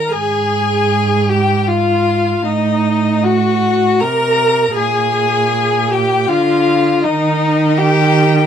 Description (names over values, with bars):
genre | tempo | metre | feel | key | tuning
classical, slow romantic movement for string quartet | 78 BPM | 3/4 | uneven beats, rubato | unclear | A4 = 439 Hz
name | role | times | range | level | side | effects
rich violin | melody | 0.0-8.5 s | Eb5 to Bb5 | -19 LUFS | left 7 dB | none
clear violin | second line | 0.0-8.5 s | Eb4 to Bb4 | -21 LUFS | left 4 dB | none
clear viola | accompaniment | 0.0-8.5 s | Eb4 to Bb4 | -16 LUFS | equal | none
clear cello | bass | 0.1-8.5 s | Ab2 to Eb3 | -16 LUFS | right 4 dB | none
room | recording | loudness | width
light reverb | none | -12 LUFS | side -8 dB against mid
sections
0.1-8.5 A section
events
none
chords
0.1 Fmadd9/Ab; 2.5 Adim7; 4.8 Bb7; 7.0 Eb5